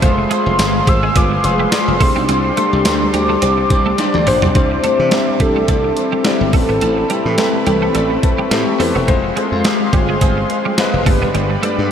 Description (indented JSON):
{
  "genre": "1980s-style pop",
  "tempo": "106 BPM",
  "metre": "4/4",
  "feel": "swing 55% on 16ths",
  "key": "C major",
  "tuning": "A4 = 444 Hz",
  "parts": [
    { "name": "mellow horn-like synth lead", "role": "melody", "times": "0.0-8.2 s", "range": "A4 to E6", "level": "-20 LUFS", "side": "equal", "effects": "chorus, diffuse ambient delay, shimmer reverb" },
    { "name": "warm grand piano", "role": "accompaniment", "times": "0.0-11.9 s", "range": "G2 to A5", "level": "-20 LUFS", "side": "left 3 dB", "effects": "lush chorus, shimmer reverb" },
    { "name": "chorused pulse-width pad", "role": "sustained chords", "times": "0.0-11.9 s", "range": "C4 to D6", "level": "-22 LUFS", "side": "left 1 dB", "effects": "shimmer reverb" },
    { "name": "twelve-string electric guitar", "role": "riff", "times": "0.0-11.7 s", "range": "G3 to C4", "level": "-24 LUFS", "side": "right 5 dB", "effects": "ensemble chorus, diffuse ambient delay, shimmer reverb" },
    { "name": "mellow synth brass", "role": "stabs", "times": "0.0-11.9 s", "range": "E3 to C5", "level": "-25 LUFS", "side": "right 1 dB", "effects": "none" },
    { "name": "glassy slap bass", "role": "bass", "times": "0.0-11.9 s", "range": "E1 to C3", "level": "-19 LUFS", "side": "equal", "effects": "none" },
    { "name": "clean 12-bit digital drum machine", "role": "drums", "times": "0.0-11.8 s", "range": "hi-hat, kick drum, snare drum, tambourine, toms", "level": "-18 LUFS", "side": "equal", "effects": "none" }
  ],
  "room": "wet huge ambient reverb, RT60 7.8 s",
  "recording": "dreamy mix soaked in reverb",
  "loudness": "-12 LUFS",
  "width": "side -8 dB against mid",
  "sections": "0.0-4.6 A section; 4.6-11.9 B section",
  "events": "drum fill 4.0-4.6; grand piano fill 7.9-9.1",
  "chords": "0.0 Fm; 2.0 Csus2; 4.6 Cadd9; 6.5 Amadd9; 9.1 Fm; 11.1 G"
}